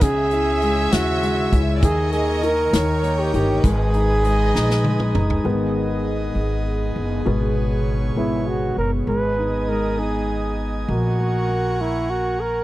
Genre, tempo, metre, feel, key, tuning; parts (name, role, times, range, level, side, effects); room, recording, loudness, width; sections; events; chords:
six-eight pop ballad; 66 BPM (dotted quarters); 6/8; straight; G# minor; A4 = 440 Hz
mellow flugelhorn; melody; 0.0-5.1, 8.2-12.6 s; E4 to B4; -22 LUFS; right 2 dB
warm symphonic violin section; second line; 0.0-5.1 s; B4 to E5; -29 LUFS; right 1 dB
warm baby grand piano; accompaniment; 0.0-12.6 s; B2 to E4; -24 LUFS; left 2 dB
airy breathy pad; sustained chords; 0.0-12.6 s; B3 to E6; -29 LUFS; right 1 dB; chorus
upright bass; bass; 0.0-12.6 s; F#1 to D#2; -23 LUFS; equal
natural country drum kit; drums; 0.0-5.4 s; hi-hat, kick drum, snare drum, toms; -21 LUFS; equal
little or no reverb; dry, close 1970s-style studio recording; -18 LUFS; side -16 dB against mid
0.0-5.4 A section; 5.4-9.1 B section; 9.1-12.6 C section
drum fill 4.5-5.4; grand piano solo 5.4-9.1
0.0 C#m; 1.8 D#7sus4; 2.7 D#7; 3.6 G#m; 10.9 F#add9/A#